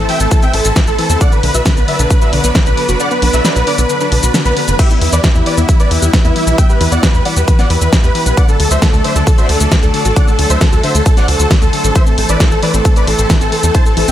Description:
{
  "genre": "uplifting trance",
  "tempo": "134 BPM",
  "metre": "4/4",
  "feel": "straight",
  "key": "E minor",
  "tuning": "A4 = 436 Hz",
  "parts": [
    { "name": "dense compressed supersaw", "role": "melody", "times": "0.0-14.1 s", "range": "D4 to A5", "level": "-16 LUFS", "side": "equal", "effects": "sidechain pumping, tape echo" },
    { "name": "lush unison pad", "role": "sustained chords", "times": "0.0-14.1 s", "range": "E3 to E5", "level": "-22 LUFS", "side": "equal", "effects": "chorus, phaser, sidechain pumping" },
    { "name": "wide unison pluck", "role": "arpeggios", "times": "0.0-14.1 s", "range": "D3 to A4", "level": "-21 LUFS", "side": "left 4 dB", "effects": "sidechain pumping, tape echo" },
    { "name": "tight sequencer bass", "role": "bass", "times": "0.0-14.1 s", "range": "F#1 to E2", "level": "-14 LUFS", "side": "equal", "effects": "sidechain pumping" },
    { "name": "big-room dance drum kit", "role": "drums", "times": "0.1-14.1 s", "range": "crash cymbal, hi-hat, shaker, snare drum", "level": "-18 LUFS", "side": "equal", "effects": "none" },
    { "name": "electronic kick drum", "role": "drums", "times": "0.3-13.8 s", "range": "none", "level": "-11 LUFS", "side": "equal", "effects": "none" }
  ],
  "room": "little or no reverb",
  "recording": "none",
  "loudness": "-9 LUFS",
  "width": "side -12 dB against mid",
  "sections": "0.0-4.8 A section; 4.8-14.1 A section",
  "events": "drop 0.0-4.8, 4.8-14.1; kick drops out 3.0-4.8; band accent 4.3",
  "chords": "0.0 Am; 1.2 Bm; 4.8 Em; 8.4 D; 12.0 Am"
}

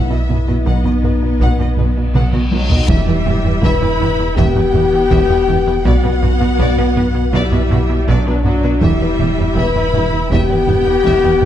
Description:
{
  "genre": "cinematic, hybrid orchestral and electronic film score",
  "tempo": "81 BPM",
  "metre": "4/4",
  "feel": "straight",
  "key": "E minor",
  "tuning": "A4 = 435 Hz",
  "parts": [
    { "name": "rich studio violin section", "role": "melody", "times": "0.0-11.5 s", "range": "F#4 to F#5", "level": "-28 LUFS", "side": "left 4 dB", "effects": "none" },
    { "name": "warm symphonic violin section", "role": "second line", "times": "0.0-11.5 s", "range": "D5 to B5", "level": "-26 LUFS", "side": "left 2 dB", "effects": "none" },
    { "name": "clear symphonic viola section", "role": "accompaniment", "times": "0.0-11.5 s", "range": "F#3 to E4", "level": "-23 LUFS", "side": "right 1 dB", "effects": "none" },
    { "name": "dark French horn section", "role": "sustained chords", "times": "0.0-11.5 s", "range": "D4 to B4", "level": "-18 LUFS", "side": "left 5 dB", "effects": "none" },
    { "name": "plucky analog bass", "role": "riff", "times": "0.0-11.5 s", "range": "E2 to B3", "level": "-22 LUFS", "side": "right 2 dB", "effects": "none" },
    { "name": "warm sub bass", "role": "bass", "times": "0.0-11.5 s", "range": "E1 to B1", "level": "-19 LUFS", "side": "equal", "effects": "none" },
    { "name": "reverse cymbal and impact", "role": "sound effects", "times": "2.0-5.9 s", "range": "none", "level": "-27 LUFS", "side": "equal", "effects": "none" },
    { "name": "dark symphonic cello section", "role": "bass", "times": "0.1-11.5 s", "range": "E2 to B2", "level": "-23 LUFS", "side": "right 3 dB", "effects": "none" },
    { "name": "rich symphonic double bass section", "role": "bass", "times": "0.3-11.1 s", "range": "E1 to B1", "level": "-23 LUFS", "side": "right 3 dB", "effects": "none" },
    { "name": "taiko ensemble", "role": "drums", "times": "0.3-11.5 s", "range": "none", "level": "-19 LUFS", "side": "equal", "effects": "none" }
  ],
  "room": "moderate scoring stage reverb, RT60 1.4 s",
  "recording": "dark, warm production",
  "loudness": "-12 LUFS",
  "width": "side -11 dB against mid",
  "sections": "0.0-2.9 A section; 2.9-11.5 B section",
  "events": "reverse cymbal 2.0-2.9; drum fill 2.2-2.9; impact 2.9-5.9",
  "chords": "0.0 B; 2.9 Em; 5.9 Bm; 8.8 Em"
}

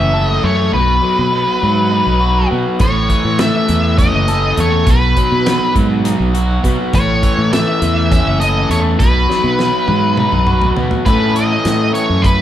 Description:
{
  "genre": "psychedelic rock",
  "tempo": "204 BPM (eighths)",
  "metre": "7/8",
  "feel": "straight",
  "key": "unclear",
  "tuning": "A4 = 440 Hz",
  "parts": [
    { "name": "octave-fuzz lead guitar", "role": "melody", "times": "0.0-12.4 s", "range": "B4 to E5", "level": "-17 LUFS", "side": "left 1 dB", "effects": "distortion" },
    { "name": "crunchy overdriven guitar", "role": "riff", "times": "0.0-12.4 s", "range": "A2 to A4", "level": "-17 LUFS", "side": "left 1 dB", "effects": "none" },
    { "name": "fingered electric bass", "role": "bass", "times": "0.0-12.4 s", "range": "F#1 to B2", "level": "-16 LUFS", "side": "equal", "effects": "none" },
    { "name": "damped 70s drum kit", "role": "drums", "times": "2.8-12.4 s", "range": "hi-hat, kick drum, snare drum, toms", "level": "-18 LUFS", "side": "equal", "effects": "none" }
  ],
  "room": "moderate large studio reverb, RT60 1.2 s",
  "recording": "band playing live in one room",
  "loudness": "-11 LUFS",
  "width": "side -11 dB against mid",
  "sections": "0.0-11.1 A section; 11.1-12.4 B section",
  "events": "drum fill 9.3-11.1",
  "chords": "0.0 A; 0.7 B; 2.8 A; 4.9 B; 6.9 A; 9.0 B; 11.1 A"
}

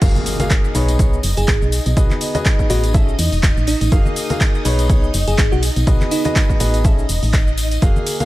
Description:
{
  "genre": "piano house",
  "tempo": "123 BPM",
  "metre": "4/4",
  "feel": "swing 56% on 16ths",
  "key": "unclear",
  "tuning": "A4 = 438 Hz",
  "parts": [
    { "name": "string machine, violins", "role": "sustained chords", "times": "0.0-8.2 s", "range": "D#4 to G#5", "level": "-27 LUFS", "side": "equal", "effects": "ensemble chorus, sidechain pumping" },
    { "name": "warm grand piano", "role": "riff", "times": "0.0-8.2 s", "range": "A#3 to E#5", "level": "-24 LUFS", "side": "left 1 dB", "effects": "vintage 12-bit sampler grit, sidechain pumping, digital delay" },
    { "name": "solid FM bass", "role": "bass", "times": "0.0-7.9 s", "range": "E1 to E2", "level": "-18 LUFS", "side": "equal", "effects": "tube saturation, sidechain pumping" },
    { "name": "electronic kick drum", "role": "drums", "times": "0.0-7.9 s", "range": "none", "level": "-15 LUFS", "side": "equal", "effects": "none" },
    { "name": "punchy analog drum machine", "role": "drums", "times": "0.0-8.2 s", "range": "cabasa, crash cymbal, handclaps, hi-hat, ride cymbal", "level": "-24 LUFS", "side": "equal", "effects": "none" },
    { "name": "tambourine and congas", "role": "percussion", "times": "0.0-8.2 s", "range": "none", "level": "-27 LUFS", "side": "left 2 dB", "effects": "none" },
    { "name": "impact", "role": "sound effects", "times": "0.0-2.0 s", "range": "none", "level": "-26 LUFS", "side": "equal", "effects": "none" },
    { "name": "bell-like FM electric piano", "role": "melody", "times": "1.4-6.8 s", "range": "D#4 to G#4", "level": "-24 LUFS", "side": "right 2 dB", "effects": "chorus, vintage 12-bit sampler grit, digital delay" }
  ],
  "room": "digital ambience",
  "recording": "none",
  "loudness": "-14 LUFS",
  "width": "side -17 dB against mid",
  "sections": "0.0-8.2 A section",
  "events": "drop 0.0-8.2; impact 0.0-2.0",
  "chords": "0.0 F#maj9; 0.7 B69; 1.7 G#m7/B; 2.9 Amaj7; 3.9 F#maj9; 4.7 B69; 5.6 G#m7/B; 6.8 Amaj7"
}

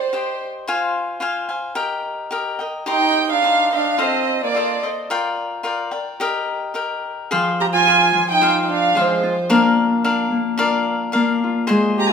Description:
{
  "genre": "mexican folk, mariachi",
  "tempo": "109 BPM",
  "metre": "2/4",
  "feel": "straight",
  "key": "unclear",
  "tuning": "A4 = 441 Hz",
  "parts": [
    { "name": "warm chamber violin section", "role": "melody", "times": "0.0-0.4, 2.9-4.8, 7.6-9.4, 12.0-12.1 s", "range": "C5 to Bb5", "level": "-17 LUFS", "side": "right 2 dB", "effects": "none" },
    { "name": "cavaquinho", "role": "accompaniment", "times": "0.0-12.1 s", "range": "D4 to Ab5", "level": "-21 LUFS", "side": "left 3 dB", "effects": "none" },
    { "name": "warm trumpet", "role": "second line", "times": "2.9-4.8, 7.6-9.4, 12.0-12.1 s", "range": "Ab3 to G4", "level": "-24 LUFS", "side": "right 6 dB", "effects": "none" },
    { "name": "Celtic harp", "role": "arpeggios", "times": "7.3-12.1 s", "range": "F3 to F4", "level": "-20 LUFS", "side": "left 2 dB", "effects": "none" }
  ],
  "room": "wet recital hall reverb, RT60 1.7 s",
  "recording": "minimal, uncompressed stereo recording",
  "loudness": "-17 LUFS",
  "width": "side -6 dB against mid",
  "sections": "0.0-7.3 A section; 7.3-12.1 B section",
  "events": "none",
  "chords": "0.0 Cm; 0.7 Fm; 1.8 Eb; 2.9 Cm; 4.0 F7; 5.1 Bb6; 6.2 Eb; 7.3 Fmadd9; 9.5 Bb"
}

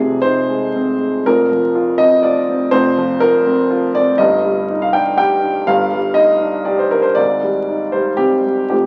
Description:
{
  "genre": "neoclassical minimalist piano",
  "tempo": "121 BPM",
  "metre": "3/4",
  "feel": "rubato",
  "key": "unclear",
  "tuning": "A4 = 441 Hz",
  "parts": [
    { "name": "warm upright piano", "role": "solo", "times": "0.0-8.9 s", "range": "F1 to G5", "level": "-15 LUFS", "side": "equal", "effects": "none" }
  ],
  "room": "light reverb",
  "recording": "very old 78 rpm record, vinyl crackle",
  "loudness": "-15 LUFS",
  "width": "mono",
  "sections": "0.0-8.9 A section",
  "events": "none",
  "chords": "0.0 Fm7; 1.2 Bbsus2/F; 4.2 Ebmaj7/G; 7.2 Abmaj7"
}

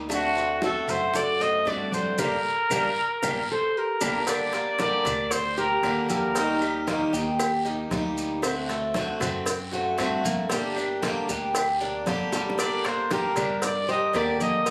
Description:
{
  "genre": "latin, Cuban son and guajira",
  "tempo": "115 BPM",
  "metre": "4/4",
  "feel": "straight",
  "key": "G harmonic minor",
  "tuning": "A4 = 440 Hz",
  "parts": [
    { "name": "picked swing-style acoustic guitar", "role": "accompaniment", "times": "0.0-14.7 s", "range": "D3 to G4", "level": "-32 LUFS", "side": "equal", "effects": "none" },
    { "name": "upright bass", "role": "bass", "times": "0.0-14.7 s", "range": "G1 to G2", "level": "-38 LUFS", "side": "equal", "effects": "none" },
    { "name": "breathy trumpet", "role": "melody", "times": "0.1-7.1, 12.6-14.7 s", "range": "F#4 to Eb5", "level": "-28 LUFS", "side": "equal", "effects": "none" },
    { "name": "nylon-string guitar", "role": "second line", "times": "0.1-7.1, 12.6-14.7 s", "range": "D4 to C5", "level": "-34 LUFS", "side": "equal", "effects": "none" },
    { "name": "bongos and cowbell", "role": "percussion", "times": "0.1-14.7 s", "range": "none", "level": "-35 LUFS", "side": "equal", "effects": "none" },
    { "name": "claves", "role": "percussion", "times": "0.1-14.4 s", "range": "none", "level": "-39 LUFS", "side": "equal", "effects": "none" },
    { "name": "congas", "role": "percussion", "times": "0.1-14.7 s", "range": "none", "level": "-38 LUFS", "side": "equal", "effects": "none" },
    { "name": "guiro", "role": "percussion", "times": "0.1-14.7 s", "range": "none", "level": "-42 LUFS", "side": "equal", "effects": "none" },
    { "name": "maracas", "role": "percussion", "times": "0.1-14.7 s", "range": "none", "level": "-38 LUFS", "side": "equal", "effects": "none" },
    { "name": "Cuban tres", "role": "arpeggios", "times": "0.4-14.7 s", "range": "G3 to G4", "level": "-33 LUFS", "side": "equal", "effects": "none" }
  ],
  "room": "moderate studio reverb, RT60 0.6 s",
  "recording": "recorded on a phone in the room, club reverb",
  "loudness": "-26 LUFS",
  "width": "mono",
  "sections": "0.0-4.3 A section; 4.3-14.7 B section",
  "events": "band accent 2.2-4.3; drum fill 3.5-4.3, 12.3",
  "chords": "0.1 D7; 2.2 Gm; 8.4 D7; 10.5 Gm"
}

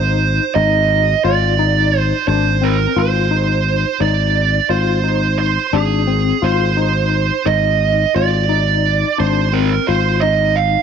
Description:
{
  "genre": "progressive instrumental, band music in an uneven meter",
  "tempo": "174 BPM (eighths)",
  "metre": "5/8",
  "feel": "straight",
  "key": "unclear",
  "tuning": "A4 = 440 Hz",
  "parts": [
    { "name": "fuzz lead guitar", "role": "melody", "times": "0.0-10.8 s", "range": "Ab4 to F5", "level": "-17 LUFS", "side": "right 10 dB", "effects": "distortion" },
    { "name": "tine electric piano", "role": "arpeggios", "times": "0.0-10.8 s", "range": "C4 to F4", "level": "-21 LUFS", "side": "left 12 dB", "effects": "medium tremolo" },
    { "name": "sustaining fretless electric bass", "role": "bass", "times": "0.0-10.8 s", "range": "Ab1", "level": "-17 LUFS", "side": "left 1 dB", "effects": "none" }
  ],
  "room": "light reverb",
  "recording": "1960s-style stereo with parts hard left and right",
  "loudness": "-13 LUFS",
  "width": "side -7 dB against mid",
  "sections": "0.0-3.0 A section; 3.0-10.8 B section",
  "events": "none",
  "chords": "0.0 Ab; 1.2 Fm7/Ab; 3.0 Ab; 4.7 Fm7/Ab; 6.4 Ab; 8.2 Fm7/Ab; 9.9 Ab5"
}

